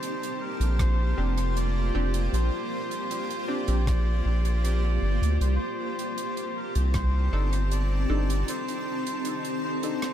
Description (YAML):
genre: ambient dub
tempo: 78 BPM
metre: 4/4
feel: straight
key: C dorian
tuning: A4 = 438 Hz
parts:
  - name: melodica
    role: melody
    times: 0.0-10.1 s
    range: Bb4 to D5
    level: -34 LUFS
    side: equal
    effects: dub echo
  - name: granular cloud pad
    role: sustained chords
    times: 0.0-10.1 s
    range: Bb3 to A5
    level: -32 LUFS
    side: equal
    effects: built-in reverb
  - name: tight metal drum kit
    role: drums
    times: 0.0-10.1 s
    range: hi-hat, rim click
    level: -41 LUFS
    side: right 3 dB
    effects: dub echo
  - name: round analog bass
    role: bass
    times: 0.6-8.4 s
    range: F1 to D2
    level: -24 LUFS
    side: equal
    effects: tube saturation
  - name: electronic kick drum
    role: drums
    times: 0.8-7.1 s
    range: none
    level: -28 LUFS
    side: equal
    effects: none
  - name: filtered dub chord stab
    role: stabs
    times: 1.2-10.1 s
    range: C4 to A4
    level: -37 LUFS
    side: equal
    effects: chorus, dub echo
room: light reverb, small room reverb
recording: none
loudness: -24 LUFS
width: side -10 dB against mid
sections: 0.0-10.1 A section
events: break 8.5-10.1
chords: 0.0 Bb69; 5.4 Cm6